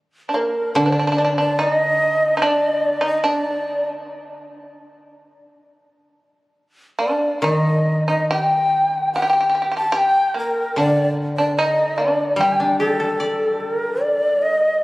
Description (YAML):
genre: japanese traditional, Japanese chamber music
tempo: 69-75 BPM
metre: 2/4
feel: rubato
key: G hirajoshi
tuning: A4 = 438 Hz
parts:
  - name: breathy shakuhachi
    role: melody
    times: 0.3-3.9, 7.0-14.8 s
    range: A4 to A5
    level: -18 LUFS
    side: equal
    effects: none
  - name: shamisen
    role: second line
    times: 0.3-3.8, 7.0-13.6 s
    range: Bb3 to G4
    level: -24 LUFS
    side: right 1 dB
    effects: none
  - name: koto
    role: accompaniment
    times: 0.8-3.2, 7.4-14.8 s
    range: D3 to D5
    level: -23 LUFS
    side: equal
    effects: none
room: wet church reverb, RT60 3.7 s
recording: recorded on a phone in the room, club ambience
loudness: -16 LUFS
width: side -19 dB against mid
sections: 0.8-14.0 A section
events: none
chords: none